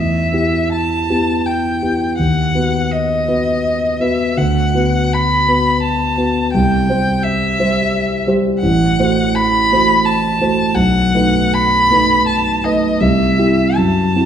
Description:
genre	classical, romantic duo for violin and grand piano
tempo	73-89 BPM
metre	3/4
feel	rubato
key	unclear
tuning	A4 = 440 Hz
part	rich violin	melody	0.0-14.3 s	D#5 to B5	-16 LUFS	left 1 dB	none
part	dark concert grand piano	accompaniment	0.0-14.3 s	A1 to C5	-15 LUFS	right 1 dB	none
room	wet recital hall reverb, RT60 1.5 s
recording	dark, warm production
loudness	-13 LUFS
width	side -8 dB against mid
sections	0.0-14.3 A section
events	none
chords	0.0 Em; 2.2 B/D#; 4.4 Bm/D; 6.5 C; 8.6 F#dim/A; 10.8 B7; 13.0 C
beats	0.72 1.45 | 2.18 2.91 3.64 | 4.36 5.12 5.83 | 6.53 7.24 7.94 | 8.62 9.37 10.07 | 10.76 11.54 12.27 | 13.00 13.78

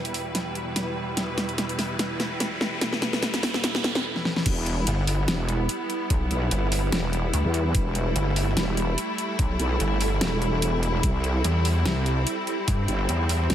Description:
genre	heavy wobble dubstep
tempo	146 BPM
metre	4/4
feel	swing 54% on 16ths, half-time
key	E minor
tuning	A4 = 440 Hz
part	bright studio string section	sustained chords	0.0-13.5 s	E2 to B4	-30 LUFS	left 1 dB	sidechain pumping
part	dubstep drum kit	drums	0.0-13.5 s	crash cymbal, hi-hat, snare drum	-28 LUFS	equal	none
part	riser	sound effects	0.0-4.0 s	none	-34 LUFS	equal	none
part	ethereal airy pad	texture	0.0-13.5 s	E4 to G5	-33 LUFS	right 3 dB	ensemble chorus, built-in reverb, phaser, sidechain pumping
part	wobble bass	bass	4.5-13.5 s	E1 to E2	-25 LUFS	equal	chorus, overdrive
part	electronic kick drum	drums	4.5-12.8 s	none	-25 LUFS	equal	none
part	pulsing pluck wobble bass	bass	4.9-13.5 s	G1 to G2	-24 LUFS	equal	chorus, overdrive
room	light reverb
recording	none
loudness	-23 LUFS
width	side -10 dB against mid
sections	0.0-4.5 A section; 4.5-13.5 B section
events	build-up 0.0-4.5; drum fill 0.0-4.0, 4.2-4.5; riser 0.0-4.0; break 4.0-4.5; drop 4.5-13.5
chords	0.0 Em; 11.0 C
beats	0.35 0.76 | 1.17 1.58 1.99 2.40 | 2.81 3.23 3.64 4.05 | 4.46 4.87 5.28 5.69 | 6.10 6.51 6.92 7.33 | 7.75 8.16 8.57 8.98 | 9.39 9.80 10.21 10.62 | 11.03 11.45 11.86 12.27 | 12.68 13.09 13.50

